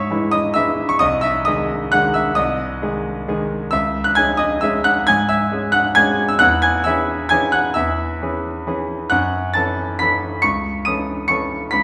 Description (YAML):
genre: classical, piano waltz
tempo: 134 BPM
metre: 3/4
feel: uneven beats, rubato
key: C# minor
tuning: A4 = 437 Hz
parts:
  - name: clear grand piano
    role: solo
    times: 0.0-11.8 s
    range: B#1 to D#7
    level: -18 LUFS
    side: equal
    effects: none
room: wet recital hall reverb, RT60 1.8 s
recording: recorded in a church or concert hall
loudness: -18 LUFS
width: mono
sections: 0.0-11.8 A section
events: none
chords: 0.0 C#m; 1.0 G#/B#; 3.7 C#m; 6.4 C#m/E; 9.1 F#m7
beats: 0.09 0.56 | 1.01 1.46 1.93 | 2.38 2.82 3.28 | 3.73 4.18 4.64 | 5.08 5.52 5.97 | 6.42 6.86 7.32 | 7.76 8.21 8.67 | 9.11 9.54 10.00 | 10.43 10.86 11.30 | 11.74